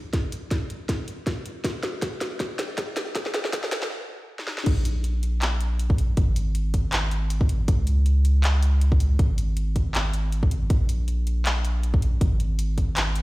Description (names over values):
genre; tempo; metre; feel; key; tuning
future bass; 159 BPM; 4/4; swing 55% on 16ths, half-time; unclear; A4 = 440 Hz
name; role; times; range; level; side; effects
saturated sub bass; bass; 0.0-13.2 s; Ab1 to Db2; -22 LUFS; equal; sidechain pumping, high-pass filter
electronic kick drum; drums; 0.1-12.9 s; none; -22 LUFS; equal; none
trap drum kit; drums; 0.1-13.2 s; crash cymbal, handclaps, hi-hat, snare drum; -29 LUFS; equal; none
room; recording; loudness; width
digital ambience; played on a big sound system in a bare room, large studio reverb, high-pass filter; -22 LUFS; side -19 dB against mid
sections
0.0-4.7 A section; 4.7-13.2 B section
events
build-up 0.0-4.7; drum fill 0.0-3.9, 4.4; filter sweep 0.0-4.7; stop 3.9-4.7; drop 4.7-13.2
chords
none